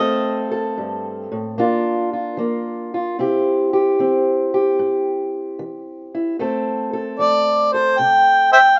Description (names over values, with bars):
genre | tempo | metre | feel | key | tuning
acoustic country blues, solo or duo | 75 BPM | 4/4 | swing 68% on 8ths | F major | A4 = 441 Hz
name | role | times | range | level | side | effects
mellow harmonica | melody | 0.0-0.5, 7.2-8.8 s | C5 to G5 | -15 LUFS | equal | none
fingerpicked steel-string acoustic guitar | accompaniment | 0.0-8.8 s | F2 to A4 | -22 LUFS | equal | none
room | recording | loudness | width
light reverb, studio ambience | rough home demo mix, nothing above 7.6 kHz | -19 LUFS | mono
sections
0.0-6.4 A section; 6.4-8.8 A section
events
none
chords
0.0 F; 1.6 Bb; 3.2 C; 6.4 F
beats
0.77 1.58 2.38 | 3.18 3.98 4.79 5.59 | 6.39 7.19 7.99 8.79